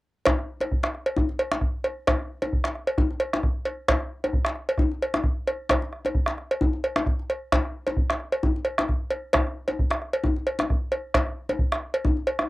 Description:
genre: west african traditional, West African drum ensemble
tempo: 132 BPM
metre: 4/4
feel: swing 54% on 16ths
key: none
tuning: none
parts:
  - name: bombo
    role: percussion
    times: 0.3-12.5 s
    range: none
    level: -24 LUFS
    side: equal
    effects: none
  - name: cowbell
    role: percussion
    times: 0.3-12.4 s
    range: none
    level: -26 LUFS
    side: right 1 dB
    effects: none
  - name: djembe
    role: percussion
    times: 0.3-12.5 s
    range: none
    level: -29 LUFS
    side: left 3 dB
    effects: none
room: moderate booth ambience, RT60 0.2 s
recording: home recording on cassette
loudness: -23 LUFS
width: side -19 dB against mid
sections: 0.3-12.5 A section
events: none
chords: none

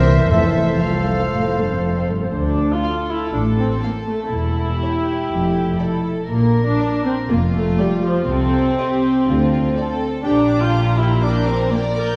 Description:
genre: quick classical-period movement for symphony orchestra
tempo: 122 BPM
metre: 4/4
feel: straight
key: D minor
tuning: A4 = 439 Hz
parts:
  - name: rich studio violin section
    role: melody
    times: 0.0-12.2 s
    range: C#5 to G6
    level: -34 LUFS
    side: equal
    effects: none
  - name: clear oboe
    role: second line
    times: 0.0-2.1 s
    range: C5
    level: -31 LUFS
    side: equal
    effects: none
  - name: rich studio violin section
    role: second line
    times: 0.0-12.2 s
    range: F4 to D5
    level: -29 LUFS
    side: equal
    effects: none
  - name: small flute group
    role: second line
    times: 0.0-2.1 s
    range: E5 to F5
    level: -28 LUFS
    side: equal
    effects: none
  - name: warm clarinet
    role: second line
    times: 0.0-2.1 s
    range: A4 to Bb4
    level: -30 LUFS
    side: equal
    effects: none
  - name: warm studio viola section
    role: accompaniment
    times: 0.0-12.2 s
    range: F3 to C5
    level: -23 LUFS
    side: equal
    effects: none
  - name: dark French horn section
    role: sustained chords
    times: 0.0-2.1 s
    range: E3 to F3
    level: -25 LUFS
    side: equal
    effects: none
  - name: dark studio double bass section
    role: bass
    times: 0.0-12.2 s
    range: E1 to D2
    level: -24 LUFS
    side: equal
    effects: none
  - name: warm chamber cello section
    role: bass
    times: 0.0-12.2 s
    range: C2 to D3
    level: -26 LUFS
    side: equal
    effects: none
  - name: timpani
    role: percussion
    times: 0.3-1.0 s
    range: F2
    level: -29 LUFS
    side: equal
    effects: none
room: wet scoring stage reverb, RT60 1.6 s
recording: dark, warm production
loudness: -19 LUFS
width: mono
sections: 0.0-2.3 A section; 2.3-12.2 B section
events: none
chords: 0.3 F; 2.3 Dm; 4.3 A7(no3)/E; 5.3 Dm/F (rootless); 6.3 Bb; 8.3 C5; 9.3 Dm7; 10.2 Gm/Bb

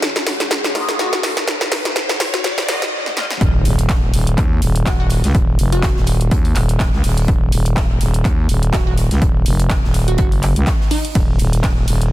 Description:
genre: bass house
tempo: 124 BPM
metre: 4/4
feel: swing 56% on 16ths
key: Eb minor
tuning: A4 = 440 Hz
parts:
  - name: big-room dance drum kit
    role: drums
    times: 0.0-12.1 s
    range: handclaps, hi-hat, ride cymbal, snare drum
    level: -22 LUFS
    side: equal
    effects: none
  - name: riser and impact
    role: sound effects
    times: 0.0-5.3 s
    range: none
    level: -25 LUFS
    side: equal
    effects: none
  - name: granular cloud pad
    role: texture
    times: 0.0-2.9 s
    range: Eb4 to Gb5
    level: -30 LUFS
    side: left 1 dB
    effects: built-in reverb, sidechain pumping
  - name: band-passed chord stab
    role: stabs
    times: 0.7-3.3 s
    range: Bb3 to Eb5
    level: -26 LUFS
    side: left 1 dB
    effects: phaser, ensemble chorus, sidechain pumping, digital delay
  - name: glassy wavetable pluck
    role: melody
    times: 1.0-11.3 s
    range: Eb4 to Gb4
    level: -26 LUFS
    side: equal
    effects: chorus, digital delay
  - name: growling FM bass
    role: bass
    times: 3.4-12.1 s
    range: Eb1 to Eb2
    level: -16 LUFS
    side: equal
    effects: overdrive, sidechain pumping
  - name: electronic kick drum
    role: drums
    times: 3.4-11.7 s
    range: none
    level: -17 LUFS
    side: equal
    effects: overdrive
  - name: gated 80s drum kit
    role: drums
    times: 3.4-12.0 s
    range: hi-hat, snare drum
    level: -33 LUFS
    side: right 3 dB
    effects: high-pass filter on hats, high-pass filter on snare, high-pass filter on room
room: light reverb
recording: dense, heavily limited modern master, high-pass filter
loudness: -14 LUFS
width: side -15 dB against mid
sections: 0.0-3.4 A section; 3.4-12.1 B section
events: build-up 0.0-3.4; drum fill 0.0-2.9, 3.0-3.4; riser 0.0-2.9; filter sweep on synth stab 0.0-3.4; break 2.9-3.4; drop 3.4-12.1; impact 3.4-5.3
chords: 0.0 Ebmadd9; 3.4 N.C.

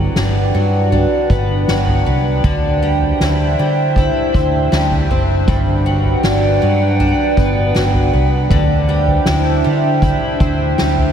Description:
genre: dream pop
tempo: 79 BPM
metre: 4/4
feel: straight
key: G major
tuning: A4 = 441 Hz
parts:
  - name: warbly tape-like pad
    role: sustained chords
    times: 0.0-11.1 s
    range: D4 to G5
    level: -19 LUFS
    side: right 2 dB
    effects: chorus, built-in reverb, phaser
  - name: picked twelve-string acoustic guitar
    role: arpeggios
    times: 0.0-11.1 s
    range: G2 to E4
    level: -19 LUFS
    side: equal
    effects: wide subtle chorus, analog delay
  - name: mellow fretless electric bass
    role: bass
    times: 0.0-11.1 s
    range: F#1 to D3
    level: -17 LUFS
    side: equal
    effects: lush chorus
  - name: soft-mallet drum kit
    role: drums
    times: 0.2-11.1 s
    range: kick drum, snare drum, toms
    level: -19 LUFS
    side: equal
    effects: none
room: moderate huge ambient reverb, RT60 7.6 s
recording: dreamy mix soaked in reverb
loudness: -12 LUFS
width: side -8 dB against mid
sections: 0.0-11.1 A section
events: none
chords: 0.0 Gmaj7; 2.4 D9sus4; 5.5 Gmaj7; 8.5 D9sus4

